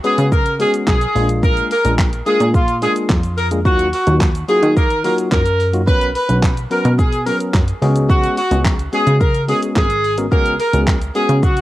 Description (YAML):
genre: dance-pop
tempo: 108 BPM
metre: 4/4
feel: straight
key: unclear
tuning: A4 = 441 Hz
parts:
  - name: warm horn section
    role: melody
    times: 0.0-11.6 s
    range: F4 to B4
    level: -18 LUFS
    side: equal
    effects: sidechain pumping, cassette tape, tape echo
  - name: bright tine electric piano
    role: accompaniment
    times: 0.0-11.4 s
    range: Gb3 to Cb5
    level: -22 LUFS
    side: left 2 dB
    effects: sidechain pumping, cassette tape
  - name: pop drum kit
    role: drums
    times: 0.0-11.6 s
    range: handclaps, hi-hat, kick drum, shaker, snare drum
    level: -17 LUFS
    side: equal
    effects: cassette tape
  - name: plucky analog bass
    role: bass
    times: 0.2-11.6 s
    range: Ab1 to Eb3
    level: -18 LUFS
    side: equal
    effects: sidechain pumping
room: moderate spring reverb, RT60 1.6 s, digital ambience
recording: home recording on cassette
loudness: -13 LUFS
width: side -15 dB against mid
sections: 0.0-11.6 A section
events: none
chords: 0.0 Db7sus4; 1.2 Bb7; 3.7 Ebmadd9; 5.9 Bsus2; 7.8 Db7sus4